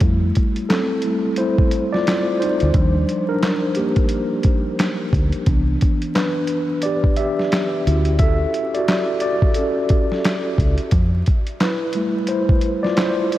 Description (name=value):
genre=lo-fi hip hop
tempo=88 BPM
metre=4/4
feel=swing 61% on 16ths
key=unclear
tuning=A4 = 440 Hz
part: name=mellow tine electric piano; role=accompaniment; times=0.0-13.4 s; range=E3 to E5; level=-20 LUFS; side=equal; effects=medium stereo tremolo, low-pass filter
part: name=deep dub fingered electric bass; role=bass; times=0.0-11.2 s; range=C2 to F2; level=-18 LUFS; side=equal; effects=none
part: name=lo-fi sampler-style drum kit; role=drums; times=0.0-13.4 s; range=handclaps, hi-hat, kick drum, snare drum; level=-20 LUFS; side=equal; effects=overdrive
room=light reverb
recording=vinyl crackle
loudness=-16 LUFS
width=side -14 dB against mid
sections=0.0-13.4 A section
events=tine electric piano solo 0.0-13.4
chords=0.0 Fmaj9; 2.7 Ebmaj9; 5.5 Cmaj9; 7.9 Dmaj9; 10.9 Fmaj9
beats=| 0.01 0.70 1.38 2.06 | 2.74 3.42 4.11 4.79 | 5.47 6.15 6.83 7.51 | 8.20 8.88 9.56 10.24 | 10.92 11.61 12.29 12.97